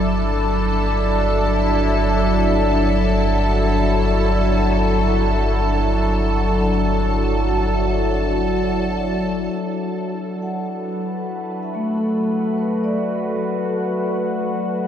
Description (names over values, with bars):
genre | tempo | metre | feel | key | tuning
ambient | free time | none | none | G major | A4 = 441 Hz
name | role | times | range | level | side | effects
evolving wavetable pad | sustained chords | 0.0-14.9 s | F#3 to B4 | -20 LUFS | equal | phaser, built-in reverb
warm sub bass | bass | 0.0-9.5 s | G1 | -21 LUFS | equal | none
bright studio violin section | texture | 0.0-9.5 s | A4 to A5 | -27 LUFS | left 1 dB | none
vibraphone with soft mallets | arpeggios | 10.4-14.9 s | F#3 to F#5 | -22 LUFS | left 1 dB | diffuse ambient delay
room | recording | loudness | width
wet huge ambient reverb, RT60 7.8 s | dark, warm production | -17 LUFS | side -9 dB against mid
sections
0.0-9.5 A section; 9.5-14.9 B section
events
none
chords
0.0 Gmaj7sus2; 9.5 F#madd11